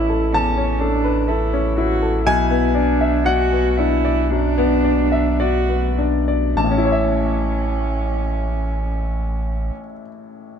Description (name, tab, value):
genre	neoclassical piano and strings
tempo	50-64 BPM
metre	4/4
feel	rubato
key	A major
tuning	A4 = 439 Hz
part	muted cello	second line	0.0-9.7 s	C#4 to F#4	-23 LUFS	right 5 dB	none
part	clear upright piano	accompaniment	0.0-10.6 s	A1 to B5	-20 LUFS	left 4 dB	none
part	pure sine sub bass	bass	0.0-9.7 s	A1 to B1	-22 LUFS	right 1 dB	none
room	light reverb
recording	dark, warm production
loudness	-16 LUFS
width	side -8 dB against mid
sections	0.0-6.6 A section; 6.6-10.6 B section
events	slowing down 0.0-6.6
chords	0.0 A; 2.3 Bm; 6.6 A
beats	0.34 1.29 | 2.26 3.25 4.30 5.40 | 6.56 7.70 8.82 9.97